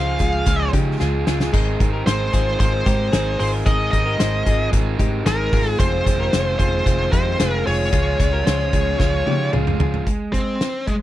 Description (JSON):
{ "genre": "jangly indie pop", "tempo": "113 BPM", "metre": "4/4", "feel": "straight", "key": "unclear", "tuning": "A4 = 442 Hz", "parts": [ { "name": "high-gain lead guitar", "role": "melody", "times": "0.0-10.9 s", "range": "Ab3 to F5", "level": "-22 LUFS", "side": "equal", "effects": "distortion" }, { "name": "crunchy overdriven guitar", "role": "accompaniment", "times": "0.0-10.6 s", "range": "F2 to Bb4", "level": "-26 LUFS", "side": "right 6 dB", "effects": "none" }, { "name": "direct-recorded clean electric guitar", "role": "arpeggios", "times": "0.0-10.1 s", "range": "Eb4 to C5", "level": "-28 LUFS", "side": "left 8 dB", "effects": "none" }, { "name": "vintage muted picked electric bass", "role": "bass", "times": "0.0-10.0 s", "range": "F1 to Db3", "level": "-22 LUFS", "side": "equal", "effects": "none" }, { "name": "loose indie drum kit", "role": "drums", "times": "0.2-11.0 s", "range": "hi-hat, kick drum, snare drum, splash cymbal, toms", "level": "-21 LUFS", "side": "equal", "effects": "none" } ], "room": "little or no reverb", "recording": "none", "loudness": "-17 LUFS", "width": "side -14 dB against mid", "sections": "0.0-10.1 A section", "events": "drum fill 1.0-1.5, 9.0-10.1", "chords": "0.0 Db; 1.5 Abadd9; 5.8 Fm7; 7.9 Db; 10.1 N.C." }